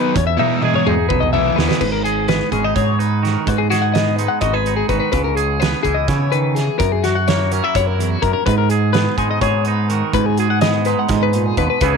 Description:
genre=math rock and midwest emo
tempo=252 BPM (eighths)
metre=7/8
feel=straight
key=unclear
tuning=A4 = 443 Hz
part: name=twangy electric guitar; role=accompaniment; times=0.0-12.0 s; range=E2 to A#4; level=-21 LUFS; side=right 14 dB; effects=none
part: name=twelve-string electric guitar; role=arpeggios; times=0.0-12.0 s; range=F#4 to F#5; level=-20 LUFS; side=left 15 dB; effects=none
part: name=crunchy overdriven guitar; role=riff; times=0.0-1.8 s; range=B2 to E4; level=-20 LUFS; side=equal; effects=none
part: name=growling picked electric bass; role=bass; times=0.2-12.0 s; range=G#1 to C#3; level=-20 LUFS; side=equal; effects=overdrive
part: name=loose indie drum kit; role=drums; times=0.2-11.9 s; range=crash cymbal, hi-hat, kick drum, snare drum, toms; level=-22 LUFS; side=right 4 dB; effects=none
room=studio reverb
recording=1960s-style stereo with parts hard left and right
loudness=-15 LUFS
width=side -5 dB against mid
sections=0.0-1.8 A section; 1.8-12.0 B section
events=drum fill 0.4-1.8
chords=0.2 Emaj7; 1.8 G#m7; 5.1 C#m7; 6.8 F#7; 8.5 G#m7

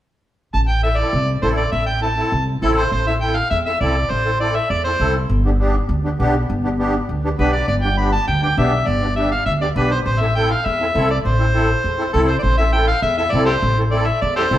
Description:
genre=latin, cumbia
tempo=202 BPM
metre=4/4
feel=straight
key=A minor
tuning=A4 = 441 Hz
part: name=overdriven harmonica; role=melody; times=0.5-5.1, 7.4-14.6 s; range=G4 to B5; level=-20 LUFS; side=equal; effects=none
part: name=upright bass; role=bass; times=0.5-14.6 s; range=G1 to E2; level=-19 LUFS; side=equal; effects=none
part: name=musette accordion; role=accompaniment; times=0.8-14.6 s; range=B3 to A4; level=-22 LUFS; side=equal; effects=none
room=wet stone room reverb, RT60 1.5 s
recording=band playing live in one room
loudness=-16 LUFS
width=side -13 dB against mid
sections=0.5-2.9 A section; 2.9-12.4 B section; 12.4-14.6 B section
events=none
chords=0.5 Am; 5.3 G; 10.1 Am

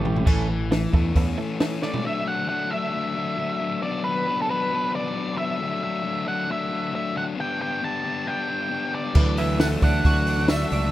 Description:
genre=indie rock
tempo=135 BPM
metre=4/4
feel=straight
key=D major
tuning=A4 = 441 Hz
part: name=sludgy distorted guitar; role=riff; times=0.0-10.9 s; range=E3 to G4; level=-28 LUFS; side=left 5 dB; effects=overdrive
part: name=twelve-string electric guitar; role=riff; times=0.0-2.0, 9.2-10.9 s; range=E3 to G4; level=-29 LUFS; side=right 6 dB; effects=analog chorus, analog delay
part: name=growling fingered electric bass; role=bass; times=0.0-1.4, 9.2-10.9 s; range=A1 to E2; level=-25 LUFS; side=right 1 dB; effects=overdrive
part: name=compact cocktail drum kit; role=drums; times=0.1-2.0, 9.1-10.8 s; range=crash cymbal, hi-hat, kick drum, snare drum, toms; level=-22 LUFS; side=equal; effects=none
part: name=octave-fuzz lead guitar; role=melody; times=1.8-10.9 s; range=A4 to A5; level=-27 LUFS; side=equal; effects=distortion
part: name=tambourine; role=percussion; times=9.6-10.6 s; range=none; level=-39 LUFS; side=right 2 dB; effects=none
room=light reverb, small room ambience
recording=rough home demo mix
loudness=-22 LUFS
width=side -14 dB against mid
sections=0.3-2.0 A section; 2.0-10.9 B section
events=drum fill 0.0, 1.8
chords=0.3 A; 2.0 Dadd9; 3.8 Bm; 5.6 Dadd9; 7.4 G; 9.2 Dadd9

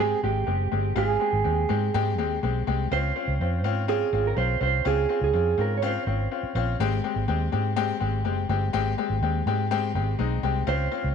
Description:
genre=uptempo 1960s-style soul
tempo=124 BPM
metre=4/4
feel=straight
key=Ab major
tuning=A4 = 440 Hz
part: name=mellow electric guitar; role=melody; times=0.0-6.5, 10.7-11.1 s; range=G4 to Db5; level=-26 LUFS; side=right 9 dB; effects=none
part: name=bright upright piano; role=accompaniment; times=0.0-11.1 s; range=Ab3 to G4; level=-28 LUFS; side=left 10 dB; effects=none
part: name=vintage muted fingered electric bass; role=bass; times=0.0-11.1 s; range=Gb1 to Ab2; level=-26 LUFS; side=right 1 dB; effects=none
room=moderate echo chamber reverb, RT60 1.9 s, small room reverb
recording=1960s-style stereo with parts hard left and right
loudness=-23 LUFS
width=side -6 dB against mid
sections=0.0-11.1 A section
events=none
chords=0.0 Abmaj7; 2.9 Dbmaj7; 6.8 Abmaj7

